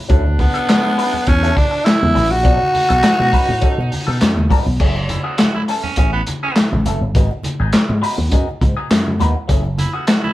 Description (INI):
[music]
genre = funk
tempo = 102 BPM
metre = 4/4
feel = straight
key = F# dorian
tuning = A4 = 440 Hz
[part]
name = raspy baritone saxophone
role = second line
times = 0.1-10.3 s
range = B3 to F#4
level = -26 LUFS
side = right 4 dB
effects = none
[part]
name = clean electric guitar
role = accompaniment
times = 0.1-10.3 s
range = E3 to B4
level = -24 LUFS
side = left 3 dB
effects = wah
[part]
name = slap bass with an envelope filter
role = bass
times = 0.1-9.8 s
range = F#1 to B2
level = -18 LUFS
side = equal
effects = none
[part]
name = crunchy breakbeat drum kit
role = drums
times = 0.1-10.2 s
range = crash cymbal, handclaps, hi-hat, kick drum, snare drum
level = -16 LUFS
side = equal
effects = none
[part]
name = congas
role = percussion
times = 0.3-10.3 s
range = none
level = -28 LUFS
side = right 1 dB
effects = none
[part]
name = growling tenor saxophone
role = melody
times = 0.4-4.2 s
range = B3 to F#4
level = -16 LUFS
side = equal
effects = none
[sound]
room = light reverb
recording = band playing live in one room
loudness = -13 LUFS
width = side -15 dB against mid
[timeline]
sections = 0.0-4.8 A section; 4.8-10.3 B section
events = none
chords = 0.0 Dmaj9; 2.5 B9; 4.8 F#m9; 7.2 G#m7; 9.5 F#m9